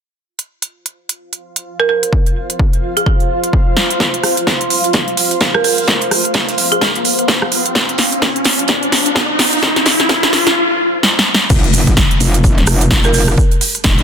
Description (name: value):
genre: bass house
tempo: 128 BPM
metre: 4/4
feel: swing 59% on 16ths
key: unclear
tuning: A4 = 439 Hz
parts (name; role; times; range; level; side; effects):
- granular cloud pad; texture; 1.8-10.6 s; F4 to F5; -21 LUFS; right 1 dB; built-in reverb, sidechain pumping
- big-room dance drum kit; drums; 0.4-14.0 s; crash cymbal, hi-hat, rim click, snare drum; -14 LUFS; equal; none
- folk marimba with hard mallets; melody; 1.8-6.9, 13.0-13.2 s; Ab4 to Bb4; -19 LUFS; right 4 dB; dub echo
- electronic kick drum; drums; 2.1-14.0 s; none; -15 LUFS; equal; high-pass filter on kick, high-pass filter on room
- damped 70s drum kit; drums; 4.0-14.0 s; hi-hat, snare drum; -25 LUFS; right 7 dB; high-pass filter on hats, high-pass filter on snare, high-pass filter on room
- riser and impact; sound effects; 5.1-13.4 s; none; -19 LUFS; left 1 dB; none
- metallic wobble bass; bass; 11.5-14.0 s; Eb1 to F1; -14 LUFS; equal; distortion, chorus, tube saturation, sidechain pumping
- egg shaker; percussion; 11.5-14.0 s; none; -24 LUFS; right 3 dB; none
room: light reverb, small room reverb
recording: dense, heavily limited modern master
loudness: -11 LUFS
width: side -7 dB against mid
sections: 0.3-4.0 A section; 4.0-11.5 B section; 11.5-14.0 C section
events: fade-in on ambient pad 0.3-4.0; drum fill 3.8, 4.0-10.6, 11.0-11.5; build-up 4.0-11.5; riser 5.1-10.6; drop 11.5-14.0; impact 11.5-13.4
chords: 0.3 F5